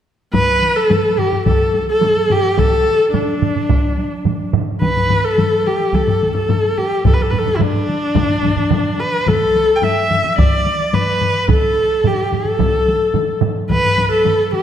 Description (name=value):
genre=japanese traditional, taiko drum ensemble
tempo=108 BPM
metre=4/4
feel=straight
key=A suspended pentatonic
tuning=A4 = 441 Hz
part: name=warm viola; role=melody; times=0.3-14.6 s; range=D4 to G5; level=-16 LUFS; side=equal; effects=slapback echo
part: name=taiko ensemble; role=percussion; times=0.3-14.6 s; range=none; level=-22 LUFS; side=equal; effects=none
part: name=taiko ensemble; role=percussion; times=0.3-14.4 s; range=none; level=-22 LUFS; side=left 4 dB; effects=none
part: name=taiko ensemble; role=percussion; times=0.3-13.8 s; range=none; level=-19 LUFS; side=equal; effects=none
part: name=taiko ensemble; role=percussion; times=2.6-13.6 s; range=none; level=-21 LUFS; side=right 5 dB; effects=none
room=wet scoring stage reverb, RT60 1.6 s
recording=none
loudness=-13 LUFS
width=side -9 dB against mid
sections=0.3-14.6 A section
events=none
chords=none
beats=| 0.34 0.90 1.46 2.02 | 2.58 3.14 3.70 4.26 | 4.82 5.38 5.94 6.50 | 7.05 7.61 8.17 8.72 | 9.28 9.83 10.39 10.94 | 11.50 12.05 12.60 13.15 | 13.70 14.25